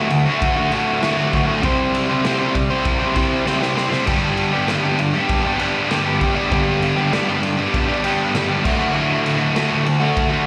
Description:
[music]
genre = garage rock duo or trio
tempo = 98 BPM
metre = 4/4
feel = straight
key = unclear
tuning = A4 = 441 Hz
[part]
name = overdriven electric guitar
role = riff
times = 0.0-10.5 s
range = D2 to C5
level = -19 LUFS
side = equal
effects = none
[part]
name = raw garage drum kit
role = drums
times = 0.1-10.3 s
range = crash cymbal, kick drum, ride cymbal, snare drum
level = -26 LUFS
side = equal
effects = none
[sound]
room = studio reverb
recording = live gig heard through the venue's PA, club reverb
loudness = -19 LUFS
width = mono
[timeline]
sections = 0.0-10.5 A section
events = drum fill 3.5-4.1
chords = 0.0 D; 1.6 C; 4.1 G; 8.6 D

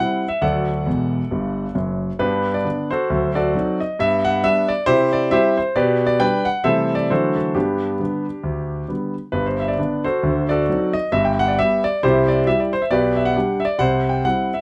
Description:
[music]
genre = jazz, stride piano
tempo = 135 BPM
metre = 4/4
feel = swing 58% on 8ths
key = G major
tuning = A4 = 441 Hz
[part]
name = clear concert grand piano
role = solo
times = 0.0-14.6 s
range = E1 to G5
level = -20 LUFS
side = equal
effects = none
[sound]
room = light reverb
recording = close, detailed microphones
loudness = -20 LUFS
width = mono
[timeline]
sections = 0.0-9.3 A section; 9.3-14.6 A section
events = grand piano fill 0.9-2.2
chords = 0.4 D; 2.2 G; 3.1 D7b9; 4.0 G; 4.9 C; 5.8 G/B; 6.7 C6; 7.1 D9; 7.6 G; 10.2 D7b9; 11.1 G; 12.0 C; 12.9 G/B; 13.8 C

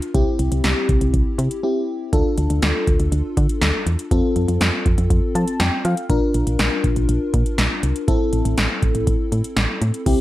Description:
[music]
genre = synth-pop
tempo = 121 BPM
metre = 4/4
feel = straight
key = unclear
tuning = A4 = 442 Hz
[part]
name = FM electric piano with soft pad layer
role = accompaniment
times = 0.0-10.2 s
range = C4 to A5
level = -22 LUFS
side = left 2 dB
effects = chorus
[part]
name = electro analog drum machine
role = drums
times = 0.0-10.2 s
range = crash cymbal, hi-hat, kick drum, snare drum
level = -20 LUFS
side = equal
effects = gated reverb
[part]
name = solid FM bass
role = bass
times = 0.1-10.2 s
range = A1 to F3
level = -20 LUFS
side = equal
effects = none
[sound]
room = light reverb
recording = none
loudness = -17 LUFS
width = side -15 dB against mid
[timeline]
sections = 0.0-10.1 A section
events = break 1.6-2.1; FM electric piano fill 5.1-6.1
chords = 0.1 C; 2.1 Dm; 4.1 F; 6.1 Bb; 8.1 Am

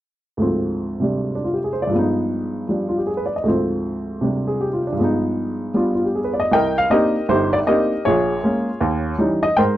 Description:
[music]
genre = solo jazz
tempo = 157 BPM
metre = 4/4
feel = swing 63% on 8ths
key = C minor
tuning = A4 = 440 Hz
[part]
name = clear upright piano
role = solo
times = 0.4-9.8 s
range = G1 to G5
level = -18 LUFS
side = equal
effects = none
[sound]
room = light reverb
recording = dry, close 1970s-style studio recording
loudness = -18 LUFS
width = side -13 dB against mid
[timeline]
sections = 0.4-6.5 A section; 6.5-9.8 B section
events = none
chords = 0.4 Dm7b5; 1.9 G7b9b13; 3.4 Dm7b5; 5.0 G7b9b13; 6.5 Cm9; 8.0 Bbm7; 8.8 Eb7b9

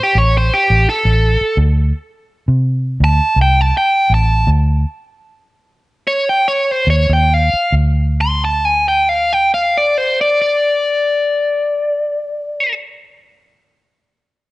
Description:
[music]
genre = blues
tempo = 68-85 BPM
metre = 4/4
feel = swing 55% on 16ths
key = D minor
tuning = A4 = 439 Hz
[part]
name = biting overdriven guitar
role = melody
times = 0.0-12.7 s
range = G4 to C6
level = -14 LUFS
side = equal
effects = spring reverb
[part]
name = vintage muted fingered electric bass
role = bass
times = 0.2-10.7 s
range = A1 to C3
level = -13 LUFS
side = equal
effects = none
[sound]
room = light reverb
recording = nothing above 10.4 kHz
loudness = -12 LUFS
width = side -19 dB against mid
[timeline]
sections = 0.0-7.7 A section; 7.7-11.3 B section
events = slowing down 1.6-7.7; stop 4.5-6.9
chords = 0.0 A7(no3); 1.6 D5; 4.5 N.C.; 6.9 Eb9; 7.7 N.C.

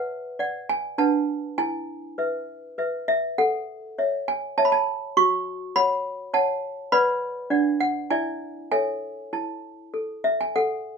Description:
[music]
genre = classical, lullaby for toy piano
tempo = 101 BPM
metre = 3/4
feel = straight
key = A major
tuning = A4 = 440 Hz
[part]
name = toy piano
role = solo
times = 0.0-11.0 s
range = D4 to C#6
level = -23 LUFS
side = right 1 dB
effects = none
[sound]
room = moderate studio ambience, RT60 0.5 s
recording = band playing live in one room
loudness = -22 LUFS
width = side -5 dB against mid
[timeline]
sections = 0.0-10.6 A section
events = none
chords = 0.0 Bm; 1.0 Bm/D; 1.6 E; 3.4 A; 5.2 F#5; 6.9 Bm; 7.5 Bm/D; 8.1 E7; 8.7 A

